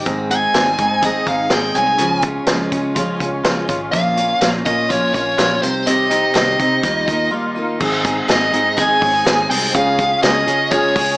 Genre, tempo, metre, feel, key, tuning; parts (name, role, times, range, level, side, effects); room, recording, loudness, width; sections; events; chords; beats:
jangly indie pop; 124 BPM; 4/4; straight; Ab major; A4 = 441 Hz
direct-recorded clean electric guitar; arpeggios; 0.0-11.2 s; Ab2 to Ab4; -23 LUFS; left 1 dB; ensemble chorus
picked steel-string acoustic guitar; accompaniment; 0.1-11.2 s; Ab2 to Ab4; -22 LUFS; right 1 dB
vintage muted picked electric bass; bass; 0.1-11.2 s; Ab1 to Db3; -28 LUFS; equal
vintage drum kit; drums; 0.1-11.1 s; crash cymbal, hi-hat, kick drum, snare drum; -20 LUFS; equal
biting lead guitar; melody; 0.3-11.2 s; C5 to Ab5; -16 LUFS; equal; overdrive
group handclap; percussion; 0.6-10.3 s; -29 LUFS; equal
moderate large studio reverb, RT60 1.4 s, small room reverb; small speaker sound; -14 LUFS; side -21 dB against mid
0.0-7.8 A section; 7.8-11.2 B section
break 7.3-7.8
0.1 Ab; 2.0 Db; 3.9 Bbm; 5.6 Cm; 6.8 Ebadd9; 7.8 Ab; 9.7 Db
| 0.06 0.54 1.02 1.51 | 1.99 2.48 2.96 3.45 | 3.93 4.42 4.90 5.39 | 5.87 6.36 6.84 7.33 | 7.81 8.29 8.78 9.26 | 9.75 10.23 10.71